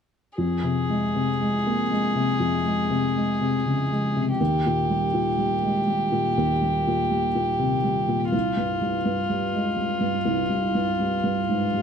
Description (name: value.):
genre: neoclassical piano and strings.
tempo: 60 BPM.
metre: 4/4.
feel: rubato.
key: F minor.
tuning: A4 = 440 Hz.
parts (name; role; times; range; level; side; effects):
warm violin; melody; 0.4-11.8 s; F4 to Ab4; -26 LUFS; left 1 dB; none.
felt-muted upright piano; accompaniment; 0.4-11.8 s; C2 to Bb3; -23 LUFS; equal; none.
room: light reverb.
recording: dark, warm production.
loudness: -21 LUFS.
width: side -7 dB against mid.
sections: 0.4-11.8 A section.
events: none.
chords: 0.4 Fm; 4.4 Eb6; 8.3 Csus4.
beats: | 0.39 1.40 2.40 3.40 | 4.40 5.39 6.38 7.36 | 8.33 9.29 10.26 11.25.